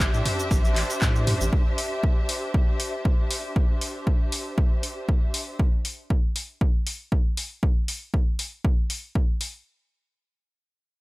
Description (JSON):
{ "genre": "acid house", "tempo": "118 BPM", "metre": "4/4", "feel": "swing 54% on 16ths", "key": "A minor", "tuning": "A4 = 436 Hz", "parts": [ { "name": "saturated sub bass", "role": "bass", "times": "0.0-1.5 s", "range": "A1 to A2", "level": "-26 LUFS", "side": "equal", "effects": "sidechain pumping" }, { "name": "dusty soul sampler-style drum kit", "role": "drums", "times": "0.0-1.4 s", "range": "ride cymbal, snare drum", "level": "-39 LUFS", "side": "right 1 dB", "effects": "none" }, { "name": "electronic kick drum", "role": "drums", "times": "0.0-9.3 s", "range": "none", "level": "-22 LUFS", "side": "equal", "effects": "none" }, { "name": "punchy analog drum machine", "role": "drums", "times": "0.0-9.5 s", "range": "cabasa, handclaps, hi-hat, toms", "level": "-29 LUFS", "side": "equal", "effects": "none" }, { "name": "rich studio string section", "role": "texture", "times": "0.0-5.6 s", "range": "D4 to E5", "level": "-31 LUFS", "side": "equal", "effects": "sidechain pumping" } ], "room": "little or no reverb", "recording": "none", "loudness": "-22 LUFS", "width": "side -21 dB against mid", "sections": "0.0-9.7 A section", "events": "none", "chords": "0.0 Am7 (rootless)" }